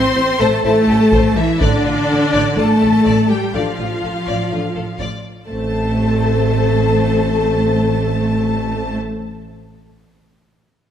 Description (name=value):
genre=cinematic, hybrid orchestral and electronic film score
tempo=124 BPM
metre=4/4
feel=straight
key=A minor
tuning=A4 = 440 Hz
part: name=rich symphonic violin section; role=second line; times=0.0-9.0 s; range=D5 to C6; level=-24 LUFS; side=left 3 dB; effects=none
part: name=warm symphonic viola section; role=accompaniment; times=0.0-9.0 s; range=D4 to C5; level=-21 LUFS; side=left 1 dB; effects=none
part: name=rich symphonic cello section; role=bass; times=0.0-9.0 s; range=D3 to C4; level=-18 LUFS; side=equal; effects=none
part: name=rich symphonic violin section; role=melody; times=0.2-9.0 s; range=E4 to D5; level=-26 LUFS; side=left 6 dB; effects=none
part: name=clear studio double bass section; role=bass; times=0.2-9.0 s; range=A1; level=-21 LUFS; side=right 4 dB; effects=none
part: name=mellow French horn section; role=sustained chords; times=0.6-9.0 s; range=C4 to C5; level=-23 LUFS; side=left 4 dB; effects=none
part: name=taiko ensemble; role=drums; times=1.1-2.5 s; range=none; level=-21 LUFS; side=equal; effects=none
room=moderate scoring stage reverb, RT60 1.9 s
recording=none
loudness=-14 LUFS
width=side -9 dB against mid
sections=0.0-5.5 A section; 5.5-9.3 B section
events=none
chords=0.0 C/A; 1.6 Dm/A; 5.5 Am